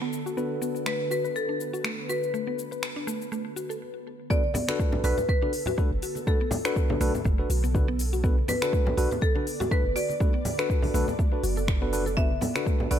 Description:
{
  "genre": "afro house",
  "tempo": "122 BPM",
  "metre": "4/4",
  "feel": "swing 56% on 16ths",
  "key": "B minor",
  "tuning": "A4 = 441 Hz",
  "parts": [
    { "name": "ethereal airy pad", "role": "sustained chords", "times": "0.0-13.0 s", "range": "D3 to D5", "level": "-38 LUFS", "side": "equal", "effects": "ensemble chorus, built-in reverb, sidechain pumping" },
    { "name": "mallet-like synth pluck", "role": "arpeggios", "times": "0.0-13.0 s", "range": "A3 to B4", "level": "-34 LUFS", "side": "equal", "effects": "chorus, sidechain pumping, ping-pong delay" },
    { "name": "tine electric piano", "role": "stabs", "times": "0.0-13.0 s", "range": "D4 to B4", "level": "-33 LUFS", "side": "moving between left 5 dB and right 2 dB", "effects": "auto-pan, sidechain pumping, ping-pong delay" },
    { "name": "deep house drum kit", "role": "drums", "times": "0.1-13.0 s", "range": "cabasa, finger snaps, hi-hat", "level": "-35 LUFS", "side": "left 1 dB", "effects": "none" },
    { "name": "marimba with medium hard mallets", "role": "melody", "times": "0.9-13.0 s", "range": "A4 to E5", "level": "-31 LUFS", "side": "left 1 dB", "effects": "ping-pong delay" },
    { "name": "electronic kick drum", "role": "drums", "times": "4.3-12.8 s", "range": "none", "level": "-25 LUFS", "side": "equal", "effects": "none" },
    { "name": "congas", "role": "percussion", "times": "4.4-12.9 s", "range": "none", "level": "-33 LUFS", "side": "left 1 dB", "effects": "none" },
    { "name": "warm 808-style bass", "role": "bass", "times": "5.0-13.0 s", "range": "F#1 to B1", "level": "-28 LUFS", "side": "equal", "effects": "sidechain pumping" }
  ],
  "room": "light reverb, digital ambience",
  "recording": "none",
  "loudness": "-24 LUFS",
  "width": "side -9 dB against mid",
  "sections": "0.0-4.3 A section; 4.3-13.0 B section",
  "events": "filter sweep on synth arpeggio sound 0.0-4.3; stop 3.8-4.3; drop 4.3-13.0",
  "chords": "0.0 Bm7",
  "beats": "| 0.37 0.86 1.35 1.85 | 2.34 2.83 3.32 3.81 | 4.30 4.80 5.29 5.78 | 6.27 6.76 7.25 7.75 | 8.24 8.73 9.22 9.71 | 10.21 10.70 11.19 11.68 | 12.17 12.66"
}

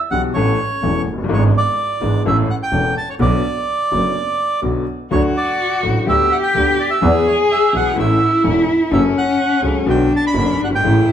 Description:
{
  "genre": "tango",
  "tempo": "126 BPM",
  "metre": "4/4",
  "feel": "rubato",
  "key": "unclear",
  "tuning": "A4 = 440 Hz",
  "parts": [
    { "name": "bandoneon", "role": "melody", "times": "0.1-11.1 s", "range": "C#5 to B5", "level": "-19 LUFS", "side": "right 2 dB", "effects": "none" },
    { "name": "clear upright piano", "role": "accompaniment", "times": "0.1-11.0 s", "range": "E1 to A4", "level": "-20 LUFS", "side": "left 3 dB", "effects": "none" },
    { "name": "bright double bass", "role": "bass", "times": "0.1-11.0 s", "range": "E1 to E2", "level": "-20 LUFS", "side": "right 2 dB", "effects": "none" },
    { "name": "dark cello", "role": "second line", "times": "5.1-11.1 s", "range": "C#4 to G#4", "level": "-17 LUFS", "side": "left 2 dB", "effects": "none" }
  ],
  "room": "wet large studio reverb, RT60 1.4 s",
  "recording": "band playing live in one room",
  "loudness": "-14 LUFS",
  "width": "side -9 dB against mid",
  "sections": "0.0-11.1 A section",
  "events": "none",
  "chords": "0.4 A; 1.3 E7/G#; 2.3 A; 3.2 Bm; 5.1 D; 6.1 G/D; 7.0 E; 8.0 A; 8.9 F#m; 9.9 Bm",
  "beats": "0.35 0.83 | 1.31 1.78 2.25 2.73 | 3.20 3.68 4.16 4.64 | 5.12 5.60 6.08 6.55 | 7.03 7.50 7.98 8.45 | 8.92 9.40 9.87 10.35 | 10.82"
}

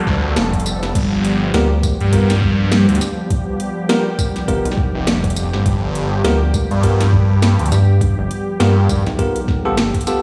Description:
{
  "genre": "glitch hop",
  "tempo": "102 BPM",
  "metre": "4/4",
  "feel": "swing 58% on 16ths",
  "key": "unclear",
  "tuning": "A4 = 441 Hz",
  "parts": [
    { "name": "warm analog pad", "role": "sustained chords", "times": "0.0-10.2 s", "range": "F3 to A4", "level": "-25 LUFS", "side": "equal", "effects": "chorus, sidechain pumping" },
    { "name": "noise sweep", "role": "sound effects", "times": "0.0-1.0 s", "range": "none", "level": "-30 LUFS", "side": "equal", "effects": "none" },
    { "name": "phased detuned saw bass", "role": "bass", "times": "0.1-9.0 s", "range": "F1 to G2", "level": "-18 LUFS", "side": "equal", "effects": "phaser" },
    { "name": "drum and bass drum kit", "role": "drums", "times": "0.1-10.2 s", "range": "crash cymbal, hi-hat, snare drum, tambourine", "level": "-25 LUFS", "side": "equal", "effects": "none" },
    { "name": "electronic kick drum", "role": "drums", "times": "0.1-10.0 s", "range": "none", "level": "-22 LUFS", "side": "equal", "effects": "none" },
    { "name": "rubbery square bass", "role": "bass", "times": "0.4-9.9 s", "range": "F1 to G2", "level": "-20 LUFS", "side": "equal", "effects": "none" },
    { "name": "bell-like tine electric piano", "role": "stabs", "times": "1.5-10.2 s", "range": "B3 to A#4", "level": "-24 LUFS", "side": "equal", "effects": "sidechain pumping, dub echo" }
  ],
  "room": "light reverb",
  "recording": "played on a big sound system in a bare room, large studio reverb, small room ambience",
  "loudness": "-16 LUFS",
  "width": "mono",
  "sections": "0.0-10.2 A section",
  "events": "noise sweep 0.0-1.0",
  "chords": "0.0 G7#9",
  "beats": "0.36 | 0.95 1.54 2.13 2.72 | 3.31 3.89 4.48 5.07 | 5.66 6.25 6.84 7.42 | 8.01 8.60 9.19 9.78"
}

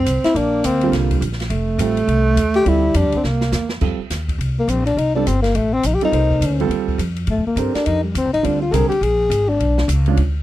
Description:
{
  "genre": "jazz, small-group swing and bop",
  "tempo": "208 BPM",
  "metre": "4/4",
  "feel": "swing 61% on 8ths",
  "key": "F mixolydian",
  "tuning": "A4 = 439 Hz",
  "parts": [
    { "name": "breathy tenor saxophone", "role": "melody", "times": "0.0-9.9 s", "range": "G3 to Bb4", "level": "-18 LUFS", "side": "left 3 dB", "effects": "none" },
    { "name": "breathy alto saxophone", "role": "second line", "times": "0.0-3.7 s", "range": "G3 to C4", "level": "-20 LUFS", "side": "right 4 dB", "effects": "none" },
    { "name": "upright bass", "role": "bass", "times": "0.0-10.4 s", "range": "F1 to A2", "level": "-20 LUFS", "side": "equal", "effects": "none" },
    { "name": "open jazz drum kit", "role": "drums", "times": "0.1-10.3 s", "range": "crash cymbal, hi-hat, kick drum, ride cymbal, snare drum", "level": "-28 LUFS", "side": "equal", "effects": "none" },
    { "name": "warm grand piano", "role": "accompaniment", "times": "0.8-10.2 s", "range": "D3 to C5", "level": "-22 LUFS", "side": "right 10 dB", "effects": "none" }
  ],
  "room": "little or no reverb",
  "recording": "dry, close 1970s-style studio recording",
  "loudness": "-16 LUFS",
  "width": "side -14 dB against mid",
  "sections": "0.0-3.8 A section; 3.8-10.4 B section",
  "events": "drum fill 3.2-3.8; tenor saxophone solo 3.8-10.4",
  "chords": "0.3 Bbadd9; 1.5 F9; 2.7 Gm7; 3.2 C7; 3.8 F9; 8.4 Bb9; 9.6 Bm",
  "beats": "0.06 | 0.35 0.64 0.93 1.21 | 1.50 1.79 2.08 2.37 | 2.66 2.95 3.24 3.53 | 3.82 4.11 4.39 4.68 | 4.97 5.26 5.55 5.84 | 6.13 6.42 6.71 7.00 | 7.29 7.58 7.86 8.15 | 8.44 8.73 9.02 9.31 | 9.60 9.89 10.18"
}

